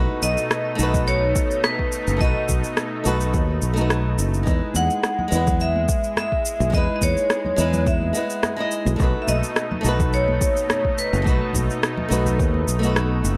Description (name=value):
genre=sunset chillout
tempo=106 BPM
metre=4/4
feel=swing 54% on 16ths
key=unclear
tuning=A4 = 440 Hz
part: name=flamenco guitar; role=accompaniment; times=0.0-13.4 s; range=G#3 to D#5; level=-29 LUFS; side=equal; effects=tape echo
part: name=lush unison pad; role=sustained chords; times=0.0-13.4 s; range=B2 to D#4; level=-33 LUFS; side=equal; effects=chorus
part: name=fingered electric bass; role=bass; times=0.0-13.4 s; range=F#1 to E2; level=-24 LUFS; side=equal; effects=none
part: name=vibraphone with hard mallets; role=melody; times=0.2-12.9 s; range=B4 to F#5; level=-27 LUFS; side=equal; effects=vintage 12-bit sampler grit, tape echo
part: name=electronic cabasa and rim click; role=drums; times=0.2-13.4 s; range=none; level=-28 LUFS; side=equal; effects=overdrive
part: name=electronic kick drum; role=drums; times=0.9-12.5 s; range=none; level=-26 LUFS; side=equal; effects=overdrive
part: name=congas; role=percussion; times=4.7-13.1 s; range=none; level=-34 LUFS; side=equal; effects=none
room=light reverb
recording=none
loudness=-21 LUFS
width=mono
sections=0.0-13.4 A section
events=none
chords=0.0 B7; 4.5 Emaj7; 9.0 B7